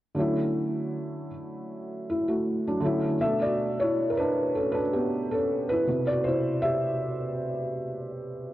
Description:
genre	hip hop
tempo	79 BPM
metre	4/4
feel	swing 56% on 16ths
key	B phrygian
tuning	A4 = 443 Hz
part	felt-muted upright piano	solo	0.1-8.5 s	B2 to E5	-25 LUFS	equal	cassette tape, low-pass filter
room	moderate plate reverb, RT60 3.4 s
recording	worn, warbling old tape, cassette tape, warbly pitch drift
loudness	-25 LUFS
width	side -14 dB against mid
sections	0.2-3.2 A section; 3.2-8.5 B section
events	felt piano solo 3.2-8.5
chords	0.2 Dmaj9; 3.2 Bm11; 5.9 Cmaj7

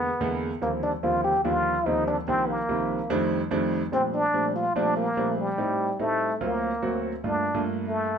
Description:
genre	jazz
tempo	145 BPM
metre	4/4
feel	straight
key	Bb major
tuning	A4 = 439 Hz
part	trombone with plunger mute	melody	0.0-8.2 s	G3 to G4	-25 LUFS	equal	none
part	warm concert grand piano	accompaniment	0.0-8.1 s	C2 to F#4	-27 LUFS	right 2 dB	none
room	moderate club reverb, RT60 0.7 s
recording	none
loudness	-23 LUFS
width	side -7 dB against mid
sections	0.0-7.2 A section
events	none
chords	0.0 E7#11; 0.6 Ebmaj13; 2.3 Cm11; 3.1 F13; 3.9 Bbmaj13; 5.6 Am7b5; 6.4 D7alt; 7.2 Gm9

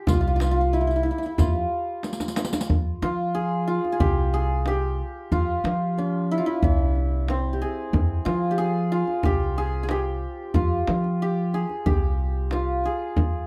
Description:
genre	Persian modal ensemble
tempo	92 BPM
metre	4/4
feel	straight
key	F avaz esfahan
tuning	A4 = 440 Hz
part	santur	melody	0.0-13.5 s	C4 to Ab4	-28 LUFS	equal	none
part	upright bass	bass	0.1-13.4 s	C2 to F3	-27 LUFS	equal	none
part	riq	percussion	0.1-2.7 s	none	-33 LUFS	equal	none
part	tombak	percussion	0.1-13.3 s	none	-28 LUFS	equal	none
room	light reverb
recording	none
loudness	-24 LUFS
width	mono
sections	0.0-2.7 A section; 2.7-13.5 B section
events	drum fill 2.0-2.7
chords	none

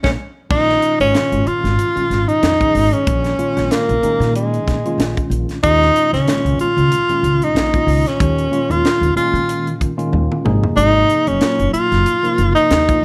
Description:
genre	electric jazz fusion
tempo	93 BPM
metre	4/4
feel	swing 56% on 16ths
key	Bb minor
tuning	A4 = 439 Hz
part	warm tenor saxophone	melody	0.0-13.0 s	Ab3 to F4	-18 LUFS	equal	none
part	tine electric piano	accompaniment	0.0-13.0 s	Bb2 to F5	-25 LUFS	equal	none
part	upright bass	bass	0.0-13.0 s	Gb1 to Eb3	-22 LUFS	equal	none
part	tight funk drum kit	drums	0.0-13.0 s	crash cymbal, hi-hat, kick drum, snare drum, toms	-24 LUFS	equal	none
room	light reverb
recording	none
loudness	-16 LUFS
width	mono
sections	0.5-13.0 A section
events	tine electric piano fill 0.0-0.5, 9.8-10.8; band accent 0.0-0.5; drum fill 0.2-0.5, 10.1-10.8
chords	0.5 Bbm7; 5.6 Ebsus2; 10.5 Ab9

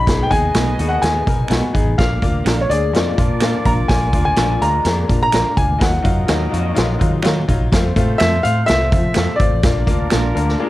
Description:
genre	uptempo 1960s-style soul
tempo	125 BPM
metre	4/4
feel	straight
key	unclear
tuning	A4 = 439 Hz
part	clear baby grand piano	melody	0.0-10.7 s	Db5 to Cb6	-20 LUFS	left 1 dB	plate reverb
part	bright upright piano	accompaniment	0.0-10.7 s	Gb3 to Bb4	-24 LUFS	left 4 dB	plate reverb
part	electric guitar through a small old amp	riff	0.0-7.5, 10.4-10.7 s	F3 to Bb4	-27 LUFS	left 8 dB	lush chorus
part	vintage muted fingered electric bass	bass	0.0-10.5 s	Ab1 to F3	-20 LUFS	equal	none
part	clear horn section	second line	0.1-10.7 s	Gb3 to Eb5	-30 LUFS	right 4 dB	plate reverb
part	vintage drum kit	drums	0.1-10.5 s	hi-hat, kick drum, snare drum	-18 LUFS	equal	none
part	finger snaps	percussion	0.5-10.2 s	none	-29 LUFS	right 4 dB	none
part	electric guitar through a small old amp	stabs	0.6-10.3 s	Gb3 to Cb5	-26 LUFS	right 5 dB	ensemble chorus, plate reverb
room	light reverb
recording	dark, warm production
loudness	-14 LUFS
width	side -16 dB against mid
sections	0.0-10.7 A section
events	none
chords	0.1 Abm/Cb; 2.0 Bb; 5.8 Ebmadd9; 7.7 F; 9.6 Bb

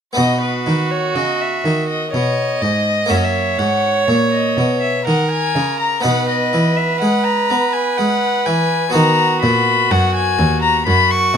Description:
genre	classical, baroque-style sonata movement with continuo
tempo	62 BPM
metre	3/4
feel	rubato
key	B major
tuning	A4 = 440 Hz
part	harpsichord	accompaniment	0.1-11.4 s	D#2 to F#4	-21 LUFS	left 1 dB	none
part	rich violin	melody	0.2-11.4 s	B4 to C#6	-18 LUFS	left 6 dB	none
part	rich violin	second line	0.2-11.4 s	F#4 to D#5	-20 LUFS	right 6 dB	none
part	warm cello	bass	0.2-11.4 s	D#2 to B3	-20 LUFS	right 1 dB	none
room	light reverb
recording	close, detailed microphones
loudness	-14 LUFS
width	side -7 dB against mid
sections	0.2-11.4 A section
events	none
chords	0.2 B; 3.1 F#; 6.0 B

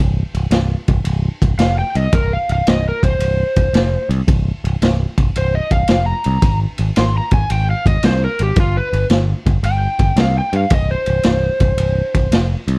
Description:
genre	blues rock power trio and southern rock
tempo	112 BPM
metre	4/4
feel	swing 68% on 8ths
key	unclear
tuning	A4 = 441 Hz
part	overdriven picked electric bass	bass	0.0-12.8 s	C1 to G2	-17 LUFS	equal	none
part	raw garage drum kit	drums	0.3-12.8 s	kick drum, ride cymbal, snare drum	-16 LUFS	equal	none
part	overdriven slide guitar	melody	1.6-12.5 s	F4 to C6	-20 LUFS	equal	slapback echo
room	little or no reverb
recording	dry, close 1970s-style studio recording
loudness	-13 LUFS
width	side -28 dB against mid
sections	0.0-12.8 A section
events	electric slide guitar solo 0.0-12.8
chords	0.0 N.C.; 8.6 G7(no3); 10.7 N.C.

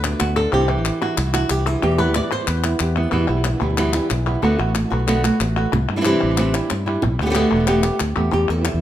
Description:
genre	flamenco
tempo	185 BPM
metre	4/4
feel	straight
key	E minor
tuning	A4 = 440 Hz
part	flamenco guitar	melody	0.0-8.8 s	E2 to D5	-20 LUFS	right 1 dB	tape echo
part	flamenco guitar	stabs	0.0-8.8 s	B2 to G4	-27 LUFS	right 3 dB	none
part	fingered electric bass	bass	0.0-8.8 s	E1 to G2	-21 LUFS	equal	none
part	palmas hand claps	percussion	0.0-8.8 s	none	-26 LUFS	left 7 dB	none
room	moderate studio reverb, RT60 0.5 s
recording	none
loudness	-17 LUFS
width	side -12 dB against mid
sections	0.0-3.1 A section; 3.1-8.3 B section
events	nylon-string guitar solo 0.0-3.1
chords	0.0 D6; 0.5 Cadd9; 1.8 Em; 4.4 D6; 5.7 Cadd9; 7.0 Gadd9

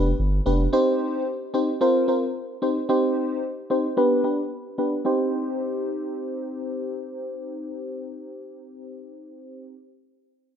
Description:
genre	afrobeats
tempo	111 BPM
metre	4/4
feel	swing 55% on 16ths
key	C minor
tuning	A4 = 439 Hz
part	FM electric piano with soft pad layer	accompaniment	0.0-9.8 s	B3 to C5	-23 LUFS	equal	chorus
part	saturated sub bass	bass	0.0-0.7 s	F1 to G1	-22 LUFS	equal	none
room	light reverb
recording	low-pass filter, nothing above 7.8 kHz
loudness	-22 LUFS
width	side -8 dB against mid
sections	0.0-5.1 A section; 5.1-9.4 B section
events	filter sweep 0.0-5.1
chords	0.0 G; 0.7 Cm; 1.8 Bbsus2; 2.6 Cm; 4.0 G; 5.1 Cm

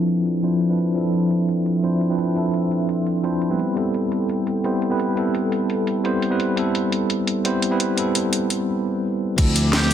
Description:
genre	liquid drum and bass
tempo	171 BPM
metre	4/4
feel	straight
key	D dorian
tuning	A4 = 440 Hz
part	bell-like tine electric piano	accompaniment	0.0-9.9 s	F3 to C5	-20 LUFS	right 1 dB	auto-pan, tape echo
part	warm analog pad	sustained chords	0.0-9.9 s	F3 to D6	-27 LUFS	left 2 dB	chorus
part	drum and bass drum kit	drums	0.1-9.9 s	crash cymbal, hi-hat, snare drum	-25 LUFS	equal	none
part	smooth gliding synth bass	bass	9.4-9.9 s	D2	-19 LUFS	equal	none
part	crunchy breakbeat drum kit	drums	9.4-9.9 s	hi-hat, snare drum	-27 LUFS	equal	high-pass filter on hats, high-pass filter on snare, high-pass filter on room
part	electronic kick drum	drums	9.4-9.5 s	none	-17 LUFS	equal	none
part	trumpet with plunger mute	melody	9.7-9.9 s	G4	-25 LUFS	right 1 dB	none
room	moderate lush hall reverb, RT60 1.8 s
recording	dense, heavily limited modern master, low-pass filter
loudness	-19 LUFS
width	side -10 dB against mid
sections	0.0-9.4 A section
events	filter sweep on analog synth pad 0.0-9.4; filter sweep 0.0-9.4; break 8.7-9.4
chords	0.0 Dm7; 3.6 Am7; 9.4 Dm7

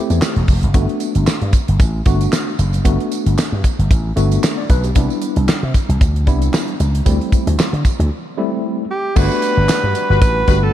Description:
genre	early-eighties boogie funk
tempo	114 BPM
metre	4/4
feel	swing 56% on 16ths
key	G major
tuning	A4 = 440 Hz
part	tine electric piano	accompaniment	0.0-10.7 s	G3 to D5	-22 LUFS	left 1 dB	overdrive, fast stereo tremolo
part	slap bass with an envelope filter	bass	0.1-10.7 s	E1 to D3	-16 LUFS	equal	none
part	damped 70s drum kit	drums	0.1-10.6 s	crash cymbal, handclaps, hi-hat, kick drum, snare drum	-17 LUFS	equal	none
part	tambourine	percussion	0.1-10.6 s	none	-33 LUFS	right 12 dB	none
part	breathy alto saxophone	melody	8.9-10.7 s	G4 to B4	-18 LUFS	right 1 dB	tape echo
part	pipe organ, principal	sustained chords	9.2-10.7 s	G3 to B4	-24 LUFS	right 2 dB	none
part	mellow horn section	second line	10.1-10.6 s	G3 to B4	-22 LUFS	left 11 dB	none
room	light reverb, studio reverb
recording	none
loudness	-14 LUFS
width	side -12 dB against mid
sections	0.0-9.2 A section; 9.2-10.7 B section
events	break 8.1-9.2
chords	0.0 D7sus4 (rootless); 0.7 Gmaj7; 5.0 Cmaj7; 7.1 D7sus4; 9.2 Gmaj7

